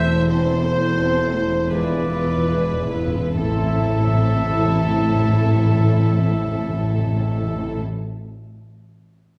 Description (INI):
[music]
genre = classical, slow romantic movement for symphony orchestra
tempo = 35-45 BPM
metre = 3/4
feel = rubato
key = A minor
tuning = A4 = 439 Hz
[part]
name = warm studio violin section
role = melody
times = 0.0-7.8 s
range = A4 to E5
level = -33 LUFS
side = equal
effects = none
[part]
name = dark studio violin section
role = second line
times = 0.0-7.8 s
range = C4 to C5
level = -31 LUFS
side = equal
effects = none
[part]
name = mellow concert flute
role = second line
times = 0.0-7.8 s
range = B4 to A5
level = -33 LUFS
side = equal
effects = none
[part]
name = warm studio viola section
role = accompaniment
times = 0.0-7.8 s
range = E3 to E4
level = -32 LUFS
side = equal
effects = none
[part]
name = dark French horn section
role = sustained chords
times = 0.0-7.8 s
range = B3 to B4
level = -35 LUFS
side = equal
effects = none
[part]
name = dark trombone section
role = sustained chords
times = 0.0-7.8 s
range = E3 to A3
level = -31 LUFS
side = equal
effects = none
[part]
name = concert harp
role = arpeggios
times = 0.0-8.2 s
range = A2 to E5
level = -30 LUFS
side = equal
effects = none
[part]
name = mellow trumpet section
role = stabs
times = 0.0-7.8 s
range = C5 to E5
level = -30 LUFS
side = equal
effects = none
[part]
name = dark studio cello section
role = bass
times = 0.0-7.8 s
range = E2 to A2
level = -28 LUFS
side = equal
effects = none
[part]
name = rich studio double bass section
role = bass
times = 0.0-7.8 s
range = E1 to A1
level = -27 LUFS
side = equal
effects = none
[part]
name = timpani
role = percussion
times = 1.7-7.8 s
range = E2 to A2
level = -26 LUFS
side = equal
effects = none
[sound]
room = wet stone room reverb, RT60 1.2 s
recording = heard from further back in the room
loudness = -20 LUFS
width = mono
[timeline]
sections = 0.0-3.3 A section; 3.3-8.2 B section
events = slowing down 0.0-3.3; timpani fill 1.7-3.3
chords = 0.0 Am/E; 1.7 E7b9; 3.3 Am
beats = 0.30 1.71 | 3.35 4.94 6.53